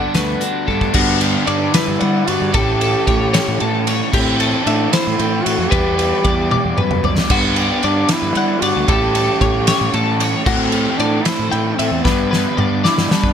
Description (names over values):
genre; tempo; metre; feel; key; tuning
math rock and midwest emo; 76 BPM (dotted quarters); 6/8; straight; G major; A4 = 441 Hz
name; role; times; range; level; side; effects
twelve-string electric guitar; accompaniment; 0.0-2.5 s; D2 to F#4; -26 LUFS; right 7 dB; lush chorus
twelve-string electric guitar; arpeggios; 0.0-13.3 s; F#4 to G5; -21 LUFS; left 6 dB; analog chorus, digital delay
overdriven electric guitar; riff; 0.0-13.3 s; G2 to E4; -22 LUFS; right 1 dB; none
fuzz fingered electric bass; bass; 0.1-13.3 s; D2 to G3; -21 LUFS; equal; overdrive
loose indie drum kit; drums; 0.1-13.3 s; crash cymbal, hi-hat, kick drum, ride cymbal, snare drum, toms; -19 LUFS; equal; none
mellow duduk; melody; 0.9-13.3 s; B3 to G4; -21 LUFS; right 1 dB; digital delay
room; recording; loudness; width
light reverb, studio reverb; bright 1980s-style digital production; -14 LUFS; side -8 dB against mid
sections
1.0-13.3 A section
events
drum fill 0.7, 6.5-7.3, 12.0-13.3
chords
0.0 Gmaj9; 1.0 Gmaj7; 2.5 A7; 4.1 Am7; 5.7 Em7; 7.3 Gmaj7; 8.9 A7; 10.5 Am7; 12.0 G